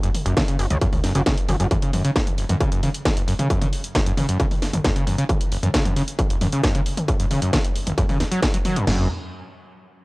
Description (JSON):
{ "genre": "driving peak-time techno", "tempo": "134 BPM", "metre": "4/4", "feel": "straight", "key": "unclear", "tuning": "A4 = 439 Hz", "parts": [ { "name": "screaming distorted acid line", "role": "riff", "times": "0.0-9.1 s", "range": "F#1 to F#3", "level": "-24 LUFS", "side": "equal", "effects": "distortion, lush chorus, sidechain pumping, analog delay" }, { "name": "gritty driven synth bass", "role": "bass", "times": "0.0-1.7, 8.9-9.1 s", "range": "F#1 to C#2", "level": "-23 LUFS", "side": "equal", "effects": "sidechain pumping" }, { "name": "techno drum kit", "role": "drums", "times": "0.0-8.9 s", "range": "hi-hat, snare drum, toms", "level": "-26 LUFS", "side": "equal", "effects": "none" }, { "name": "techno drum kit", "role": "drums", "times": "0.4-9.0 s", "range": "crash cymbal, kick drum, snare drum, toms", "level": "-22 LUFS", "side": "equal", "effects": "distortion" } ], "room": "little or no reverb", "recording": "dry, gritty hardware recording, cassette tape", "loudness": "-19 LUFS", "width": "side -24 dB against mid", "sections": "0.0-8.9 A section; 8.9-10.0 B section", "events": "filter sweep on acid bass 0.0-8.9", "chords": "0.0 F#5; 8.9 N.C.", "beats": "0.37 0.81 1.26 | 1.71 2.16 2.60 3.05 | 3.50 3.95 4.40 4.84 | 5.29 5.74 6.19 6.63 | 7.08 7.53 7.98 8.43 | 8.87" }